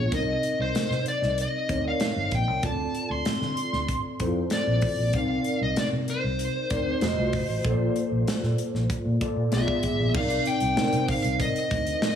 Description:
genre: polished 1980s jazz-funk pop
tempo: 96 BPM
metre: 4/4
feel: straight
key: C dorian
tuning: A4 = 438 Hz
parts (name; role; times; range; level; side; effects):
- smooth overdriven lead guitar; melody; 0.0-12.2 s; C5 to C6; -29 LUFS; left 2 dB; none
- mellow tine electric piano; accompaniment; 0.0-12.2 s; A3 to Eb5; -28 LUFS; equal; ensemble chorus
- vintage muted fingered electric bass; bass; 0.0-11.9 s; F1 to D3; -28 LUFS; equal; none
- modern studio drum kit; drums; 0.1-12.2 s; crash cymbal, hi-hat, kick drum, snare drum; -31 LUFS; equal; gated reverb
room: light reverb, small room reverb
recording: small room ambience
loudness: -23 LUFS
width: side -8 dB against mid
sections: 0.0-10.2 A section; 10.2-12.2 B section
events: none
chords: 0.1 Cm9; 2.6 Dm7; 5.1 Cm9; 7.0 F7b9; 7.6 Bbmaj7; 9.5 Bdim7; 10.2 Cm9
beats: | 0.12 0.75 1.38 2.00 | 2.63 3.26 3.88 4.51 | 5.14 5.77 6.39 7.02 | 7.65 8.27 8.90 9.52 | 10.15 10.78 11.40 12.03

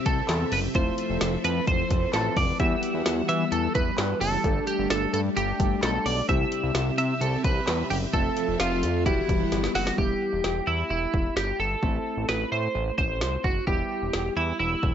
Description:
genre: synth-pop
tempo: 130 BPM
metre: 4/4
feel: straight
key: E minor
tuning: A4 = 440 Hz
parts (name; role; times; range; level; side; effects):
- twelve-string electric guitar; melody; 0.0-14.9 s; E4 to E5; -27 LUFS; right 2 dB; analog chorus, tape echo
- warm analog keys; accompaniment; 0.0-14.9 s; G3 to E5; -32 LUFS; left 2 dB; chorus
- string machine, violas; sustained chords; 0.0-10.0 s; C3 to F#5; -32 LUFS; left 1 dB; phaser, ensemble chorus
- fat analog bass; bass; 0.1-14.9 s; E1 to E3; -29 LUFS; equal; none
- deep house drum kit; drums; 0.1-14.9 s; handclaps, hi-hat, kick drum, snare drum; -28 LUFS; equal; none
room: digital ambience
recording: nothing above 7.7 kHz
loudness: -23 LUFS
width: side -9 dB against mid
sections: 0.0-10.0 A section; 10.0-14.9 B section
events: drum fill 9.5-10.0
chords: 0.0 C; 0.8 Fmaj7; 2.6 Emadd9; 4.4 Gsus2; 6.3 C; 8.1 Fmaj7; 9.1 Emadd9; 10.0 Em; 11.8 Am; 13.7 Em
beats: 0.29 | 0.75 1.21 1.68 2.14 | 2.60 3.06 3.52 3.98 | 4.44 4.91 5.37 5.83 | 6.29 6.75 7.21 7.67 | 8.14 8.60 9.06 9.52 | 9.98 10.44 10.90 11.37 | 11.83 12.29 12.75 13.21 | 13.68 14.14 14.60

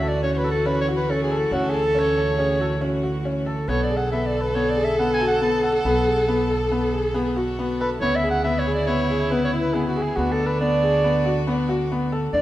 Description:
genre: contemporary instrumental, chamber music in an uneven meter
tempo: 139 BPM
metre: 5/4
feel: straight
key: D lydian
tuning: A4 = 440 Hz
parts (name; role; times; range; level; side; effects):
- mellow soprano saxophone; melody; 0.0-12.4 s; F#4 to A5; -24 LUFS; right 1 dB; none
- warm viola; second line; 0.0-12.4 s; D4 to A4; -26 LUFS; equal; none
- bright chamber string section; sustained chords; 0.0-12.4 s; C#3 to A4; -33 LUFS; left 1 dB; none
- felt-muted upright piano; arpeggios; 0.0-12.4 s; B3 to A4; -25 LUFS; left 3 dB; none
- upright bass; bass; 0.0-12.4 s; B1 to E2; -26 LUFS; right 2 dB; none
room: moderate recital hall reverb, RT60 1.4 s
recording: none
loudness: -19 LUFS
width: side -14 dB against mid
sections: 0.0-12.3 A section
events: none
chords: 0.0 F#m7/D; 3.7 Bm7; 8.0 C#m7/D; 10.2 D6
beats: 0.22 0.65 1.09 | 1.52 1.95 2.38 2.82 3.25 | 3.68 4.12 4.55 4.98 5.41 | 5.85 6.28 6.71 7.15 7.58 | 8.01 8.44 8.88 9.31 9.74 | 10.18 10.61 11.04 11.47 11.90 | 12.34

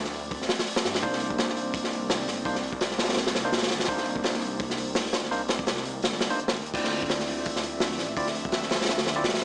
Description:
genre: drum and bass, jungle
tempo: 168 BPM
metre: 4/4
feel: swing 55% on 16ths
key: D phrygian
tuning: A4 = 441 Hz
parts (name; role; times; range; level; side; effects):
- warbly tape-like pad; sustained chords; 0.0-9.4 s; Eb3 to E5; -36 LUFS; equal; chorus, built-in reverb
- detuned saw bass; bass; 0.0-9.4 s; D1 to G2; -35 LUFS; equal; tube saturation
- crunchy breakbeat drum kit; drums; 0.0-9.4 s; crash cymbal, hi-hat, kick drum, snare drum; -26 LUFS; equal; none
- barky tine electric piano; stabs; 1.0-9.2 s; Bb3 to D5; -32 LUFS; equal; dub echo
room: light reverb, studio ambience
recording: small speaker sound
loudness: -24 LUFS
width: side -27 dB against mid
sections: 0.0-6.7 A section; 6.7-9.4 A section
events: drop 0.0-6.7, 6.7-9.4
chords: 0.0 Dm9; 1.0 Cm9; 6.7 Dm9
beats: 0.31 0.67 | 1.03 1.38 1.74 2.10 | 2.46 2.81 3.17 3.53 | 3.88 4.24 4.60 4.96 | 5.31 5.67 6.03 6.38 | 6.74 7.10 7.46 7.81 | 8.17 8.53 8.88 9.24

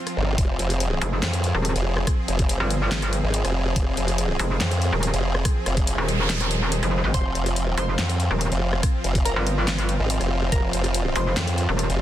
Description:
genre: heavy wobble dubstep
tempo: 142 BPM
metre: 4/4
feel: half-time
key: F minor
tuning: A4 = 442 Hz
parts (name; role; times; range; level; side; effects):
- supersaw pad; sustained chords; 0.0-12.0 s; F3 to Ab4; -29 LUFS; right 1 dB; sidechain pumping
- big-room dance drum kit; drums; 0.1-12.0 s; handclaps, hi-hat, rim click, snare drum; -29 LUFS; left 1 dB; none
- formant-sweep wobble bass; bass; 0.2-12.0 s; F1 to F2; -23 LUFS; equal; chorus, overdrive
- electronic kick drum; drums; 0.4-10.6 s; none; -22 LUFS; equal; none
- metallic wobble bass; bass; 1.0-11.9 s; Eb1 to Ab1; -22 LUFS; equal; chorus, overdrive
- noise sweep; sound effects; 5.9-7.1 s; none; -31 LUFS; right 4 dB; none
- wide unison pluck; melody; 7.1-11.7 s; Bb4 to C6; -32 LUFS; equal; tape echo
room: digital ambience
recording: dense, heavily limited modern master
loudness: -20 LUFS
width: side -12 dB against mid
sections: 0.0-12.0 A section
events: noise sweep 5.9-7.1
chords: 0.0 F5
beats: | 0.38 0.80 1.23 1.65 | 2.07 2.49 2.92 3.34 | 3.76 4.18 4.61 5.03 | 5.45 5.87 6.30 6.72 | 7.14 7.56 7.99 8.41 | 8.83 9.25 9.68 10.10 | 10.52 10.94 11.37 11.79

